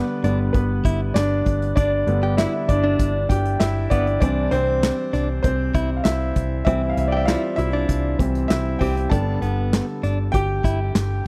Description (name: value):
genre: piano-driven pop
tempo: 98 BPM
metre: 4/4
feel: straight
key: C major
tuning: A4 = 436 Hz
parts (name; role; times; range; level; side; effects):
- clear baby grand piano; accompaniment; 0.0-11.3 s; D3 to A5; -25 LUFS; equal; none
- direct-recorded clean electric guitar; riff; 0.0-10.8 s; B3 to G4; -30 LUFS; equal; spring reverb
- vintage muted picked electric bass; bass; 0.2-11.2 s; G1 to C2; -26 LUFS; equal; none
- unplugged drum kit; drums; 0.2-11.1 s; handclaps, hi-hat, kick drum, snare drum; -24 LUFS; equal; none
room: small room ambience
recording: dry, close 1970s-style studio recording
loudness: -21 LUFS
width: mono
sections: 0.0-11.3 A section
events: grand piano solo 0.0-11.3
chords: 0.0 G; 4.2 C; 9.1 G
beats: 0.55 1.16 | 1.77 2.38 2.99 3.61 | 4.22 4.83 5.44 6.05 | 6.67 7.28 7.89 8.50 | 9.11 9.72 10.34 10.95